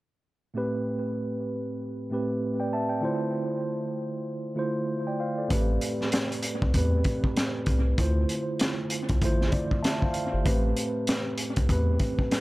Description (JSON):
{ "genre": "hip hop, boom-bap hip-hop", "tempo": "97 BPM", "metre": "4/4", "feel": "swing 60% on 16ths", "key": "A minor", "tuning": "A4 = 440 Hz", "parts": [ { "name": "mellow tine electric piano", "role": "accompaniment", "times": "0.5-12.4 s", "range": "A2 to A5", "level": "-28 LUFS", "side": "right 1 dB", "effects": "medium stereo tremolo, cassette tape, high-pass filter, low-pass filter, analog delay" }, { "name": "round analog bass", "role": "bass", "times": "5.5-12.0 s", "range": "G1 to E2", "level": "-25 LUFS", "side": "equal", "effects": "none" }, { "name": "crunchy breakbeat drum kit", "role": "drums", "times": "5.5-12.4 s", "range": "hi-hat, kick drum, snare drum", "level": "-27 LUFS", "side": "equal", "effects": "analog delay" } ], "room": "light reverb, small room ambience", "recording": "echo-heavy mix", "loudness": "-25 LUFS", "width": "side -19 dB against mid", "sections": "0.6-5.5 A section; 5.5-12.4 B section", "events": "tine electric piano fill 9.2-10.5", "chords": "0.6 Am7; 3.0 Dm7; 5.5 Am7; 8.0 Dm7; 10.5 Am7", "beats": "| 0.56 1.18 1.79 2.41 | 3.03 3.65 4.27 4.89 | 5.51 6.12 6.74 7.36 | 7.98 8.60 9.22 9.84 | 10.45 11.07 11.69 12.31" }